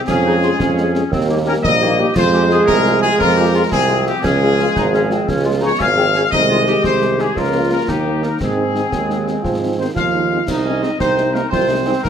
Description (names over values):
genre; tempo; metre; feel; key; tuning
military-style march for wind band; 115 BPM (dotted quarters); 6/8; straight; Ab major; A4 = 439 Hz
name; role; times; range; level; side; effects
mellow woodwind section; second line; 0.0-12.1 s; Bb3 to Ab4; -22 LUFS; left 1 dB; none
mellow trumpet section; melody; 0.1-12.1 s; G4 to F5; -19 LUFS; left 3 dB; none
mellow trombone section; sustained chords; 0.1-11.9 s; Eb3 to Db4; -22 LUFS; right 3 dB; none
clear tuba; bass; 0.1-12.1 s; Ab1 to Ab2; -19 LUFS; right 4 dB; none
concert snare drum, clash cymbals and concert bass drum; drums; 0.1-12.1 s; none; -26 LUFS; left 1 dB; none
dark French horn section; accompaniment; 0.3-11.9 s; Ab3 to Ab4; -24 LUFS; left 4 dB; none
warm euphonium; second line; 9.8-12.1 s; Bb3 to F4; -21 LUFS; right 5 dB; none
room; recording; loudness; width
light reverb; none; -13 LUFS; side -8 dB against mid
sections
0.0-10.5 A section; 10.5-12.1 A section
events
none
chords
0.1 Db/F; 1.1 Eb; 2.2 Fm; 4.2 Db; 6.3 Ab/C; 7.4 Bbm/Db; 7.9 Eb; 8.4 Ab; 10.5 Ab/C